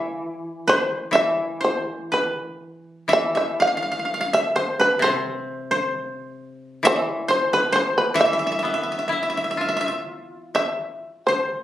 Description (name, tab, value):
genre	japanese traditional, Japanese chamber music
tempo	60-68 BPM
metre	2/4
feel	rubato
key	unclear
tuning	A4 = 443 Hz
part	shamisen	melody	0.0-11.6 s	B4 to F5	-21 LUFS	equal	none
part	koto	second line	0.0-11.6 s	A4 to F5	-23 LUFS	right 1 dB	none
part	koto	accompaniment	0.0-11.5 s	C3 to F4	-29 LUFS	left 3 dB	none
room	moderate studio reverb, RT60 0.5 s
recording	recorded on a phone in the room, club reverb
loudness	-20 LUFS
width	side -12 dB against mid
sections	0.0-10.6 A section; 10.6-11.6 B section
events	none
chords	none